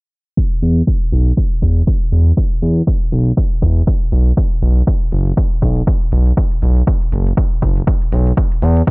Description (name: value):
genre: deep house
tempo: 120 BPM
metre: 4/4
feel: swing 58% on 16ths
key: unclear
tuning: A4 = 439 Hz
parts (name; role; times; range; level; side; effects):
- electronic kick drum; drums; 0.4-8.9 s; none; -15 LUFS; equal; overdrive
- electronic hi-hat; drums; 0.5-8.9 s; none; -51 LUFS; right 4 dB; overdrive
- smooth gliding synth bass; bass; 0.6-8.8 s; F#1 to E2; -12 LUFS; equal; sidechain pumping
room: little or no reverb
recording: low-pass filter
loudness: -12 LUFS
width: side -30 dB against mid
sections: 0.4-8.9 A section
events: filter sweep on analog synth bass 0.4-8.9; filter sweep 0.4-8.9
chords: none